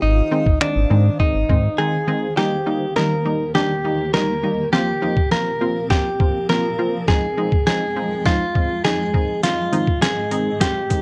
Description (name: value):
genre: dance-pop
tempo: 102 BPM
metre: 4/4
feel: straight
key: Eb major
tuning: A4 = 440 Hz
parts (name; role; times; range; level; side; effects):
- direct-recorded clean electric guitar; melody; 0.0-11.0 s; D4 to Bb4; -24 LUFS; equal; warbly pitch drift, tape echo
- punchy chord stab; accompaniment; 0.0-11.0 s; Eb3 to F4; -26 LUFS; equal; chorus, sidechain pumping
- granular cloud pad; sustained chords; 0.0-11.0 s; Eb2 to Eb6; -32 LUFS; equal; built-in reverb, sidechain pumping
- sub bass with octave; bass; 0.0-1.7 s; Ab1 to Ab2; -19 LUFS; equal; sidechain pumping
- trip hop sampler-style drum kit; drums; 0.5-11.0 s; finger snaps, hi-hat, kick drum, snare drum; -22 LUFS; equal; none
room: light reverb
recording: dry, close 1970s-style studio recording, high-pass filter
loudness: -19 LUFS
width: mono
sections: 0.0-2.4 A section; 2.4-11.0 B section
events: break 1.8-2.4; build-up 2.4-11.0; drum fill 2.4-11.0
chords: 0.0 Ab; 2.4 Eb; 4.7 Bbsus2; 7.1 Fm7; 9.1 Ab